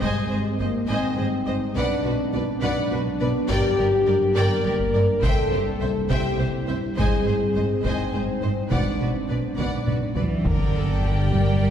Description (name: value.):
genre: cinematic, hybrid orchestral and electronic film score.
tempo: 69 BPM (dotted quarters).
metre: 6/8.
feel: straight.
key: unclear.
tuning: A4 = 439 Hz.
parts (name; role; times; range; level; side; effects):
clear symphonic violin section; second line; 0.0-11.7 s; F#4 to Ab5; -31 LUFS; left 2 dB; none.
rich symphonic viola section; accompaniment; 0.0-11.7 s; Bb4 to Eb5; -32 LUFS; right 2 dB; none.
ethereal airy pad; sustained chords; 0.0-11.7 s; F#3 to Eb5; -29 LUFS; equal; ensemble chorus, built-in reverb, tremolo.
warm French horn section; sustained chords; 0.0-11.7 s; Ab3 to Bb4; -26 LUFS; left 2 dB; none.
rich symphonic cello section; bass; 0.0-11.7 s; G2 to G3; -28 LUFS; right 2 dB; none.
rich symphonic double bass section; bass; 0.0-11.7 s; G1 to C2; -28 LUFS; right 1 dB; none.
taiko ensemble; drums; 0.0-11.7 s; none; -28 LUFS; equal; none.
rich studio violin section; melody; 10.4-11.7 s; G5; -34 LUFS; left 2 dB; none.
sub bass with octave; bass; 10.4-11.7 s; G1; -27 LUFS; equal; none.
impact; sound effects; 10.4-11.7 s; none; -31 LUFS; equal; none.
room: wet scoring stage reverb, RT60 1.9 s.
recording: heard from further back in the room.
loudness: -20 LUFS.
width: side -9 dB against mid.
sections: 0.0-10.4 A section; 10.4-11.7 B section.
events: drum fill 9.6-10.4; impact 10.4-11.7.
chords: 0.0 Ab; 1.8 Bm; 3.5 Gm; 5.2 C; 7.0 Ab; 8.7 Bm; 10.4 Gm.